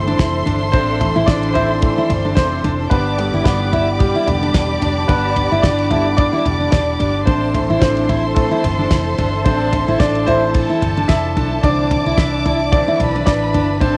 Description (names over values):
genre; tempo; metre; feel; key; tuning
piano-driven pop; 110 BPM; 4/4; swing 56% on 16ths; A minor; A4 = 440 Hz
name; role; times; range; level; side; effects
clear studio violin section; second line; 0.0-14.0 s; A4 to D6; -27 LUFS; equal; cassette tape, analog delay
clear baby grand piano; accompaniment; 0.0-14.0 s; D3 to E5; -22 LUFS; equal; cassette tape
dark studio string section; sustained chords; 0.0-14.0 s; E4 to C6; -29 LUFS; equal; cassette tape
vintage muted fingered electric bass; bass; 0.0-14.0 s; E1 to C2; -24 LUFS; equal; none
fingerpicked steel-string acoustic guitar; riff; 0.1-14.0 s; D4 to E4; -23 LUFS; equal; cassette tape
damped 70s drum kit; drums; 0.1-14.0 s; kick drum, ride cymbal, snare drum, toms; -21 LUFS; equal; cassette tape
room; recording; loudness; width
light reverb; home recording on cassette; -16 LUFS; mono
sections
0.0-14.0 A section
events
grand piano solo 0.0-14.0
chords
0.0 Am; 2.9 G; 7.3 Am; 11.6 Cadd9